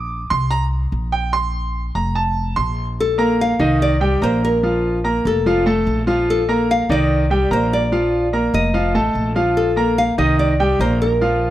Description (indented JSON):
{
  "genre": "latin, Cuban son and guajira",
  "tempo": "146 BPM",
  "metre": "4/4",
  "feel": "straight",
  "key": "Bb major",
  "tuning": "A4 = 441 Hz",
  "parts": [
    { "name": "clear baby grand piano", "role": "arpeggios", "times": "0.0-11.5 s", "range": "Eb3 to D6", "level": "-18 LUFS", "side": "right 1 dB", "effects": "none" },
    { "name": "upright bass", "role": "bass", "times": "0.0-11.5 s", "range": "F1 to C2", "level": "-21 LUFS", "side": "equal", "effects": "none" },
    { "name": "nylon-string guitar", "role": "melody", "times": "3.0-11.5 s", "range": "A4 to F5", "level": "-21 LUFS", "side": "left 2 dB", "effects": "none" }
  ],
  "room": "studio ambience",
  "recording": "dry, close 1970s-style studio recording",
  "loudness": "-15 LUFS",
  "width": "side -13 dB against mid",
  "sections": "0.0-3.0 A section; 3.0-11.5 B section",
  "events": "grand piano solo 0.0-3.0",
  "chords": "0.0 Gmadd11/Bb; 1.3 Bb5; 3.8 Cm7; 4.6 Bb5; 5.5 F; 6.3 Bbmaj7; 7.1 Cm7; 7.9 Bb; 8.7 F7; 9.6 Bb5; 10.4 Cm7"
}